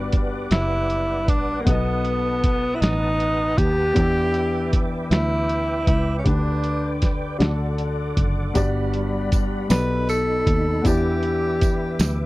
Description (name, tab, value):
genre	slow gospel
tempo	52 BPM (dotted quarters)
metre	6/8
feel	straight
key	G major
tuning	A4 = 440 Hz
part	warm upright piano	accompaniment	0.0-12.3 s	G2 to F#5	-27 LUFS	left 3 dB	none
part	tonewheel organ	sustained chords	0.0-12.3 s	G3 to D#6	-31 LUFS	right 1 dB	slow rotary speaker, chorus vibrato
part	fingered electric bass	bass	0.0-12.3 s	F#1 to E2	-25 LUFS	equal	none
part	lo-fi sampler-style drum kit	drums	0.1-12.2 s	hi-hat, kick drum, snare drum	-21 LUFS	equal	none
part	warm tenor saxophone	melody	0.5-12.3 s	Bb3 to B4	-23 LUFS	equal	none
part	tambourine	percussion	8.6-12.3 s	none	-37 LUFS	right 9 dB	none
room	little or no reverb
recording	dry, close 1970s-style studio recording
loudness	-19 LUFS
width	side -19 dB against mid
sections	0.0-12.3 A section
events	none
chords	0.0 Gmaj7; 1.7 B7; 4.0 Em7; 6.3 G/D; 7.4 D; 8.6 Gmaj7; 9.7 B7alt; 10.8 Em7